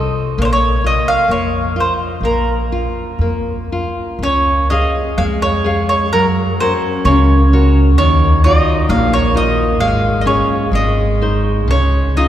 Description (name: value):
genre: fado-style ballad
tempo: 60-66 BPM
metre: 2/4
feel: rubato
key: Bb harmonic minor, Db major from 4.2 s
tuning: A4 = 440 Hz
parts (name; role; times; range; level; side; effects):
- mandolin; melody; 0.0-12.3 s; Bb4 to F5; -17 LUFS; right 1 dB; none
- nylon-string guitar; accompaniment; 0.0-12.3 s; Db3 to F5; -18 LUFS; left 2 dB; none
- upright bass; bass; 0.0-12.3 s; Ab1 to Gb2; -16 LUFS; equal; none
room: wet cathedral reverb, RT60 5.4 s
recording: recorded in a church or concert hall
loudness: -12 LUFS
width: side -11 dB against mid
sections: 0.0-4.2 A section; 4.2-12.3 B section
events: none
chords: 0.4 Bb5; 4.2 Db; 6.1 Gb; 8.0 Ebmadd9; 9.8 Db/Ab; 10.7 Ab; 11.7 Dbadd9